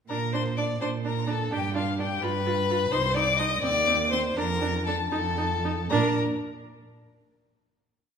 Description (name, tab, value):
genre	quick classical-period movement for string quartet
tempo	74-86 BPM (dotted quarters)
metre	6/8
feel	rubato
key	Bb major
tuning	A4 = 440 Hz
part	rich violin	melody	0.1-6.2 s	F5 to Eb6	-29 LUFS	left 8 dB	none
part	rich violin	second line	0.1-6.2 s	F4 to Eb5	-30 LUFS	left 2 dB	none
part	rich viola	accompaniment	0.1-6.2 s	C4 to F4	-31 LUFS	right 3 dB	none
part	dark cello	bass	0.1-6.2 s	C2 to Bb2	-30 LUFS	right 4 dB	none
room	wet recital hall reverb, RT60 1.7 s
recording	minimal, uncompressed stereo recording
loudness	-24 LUFS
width	side -7 dB against mid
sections	0.1-5.9 A section; 5.9-7.4 final chord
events	none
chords	0.1 Bb; 1.5 G5; 2.2 G7; 2.9 Cm; 3.6 Cm/Eb; 4.4 Bb/F; 5.1 F7; 5.9 Bb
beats	| 0.09 0.81 | 1.51 2.21 | 2.92 3.63 | 4.37 5.11 | 5.89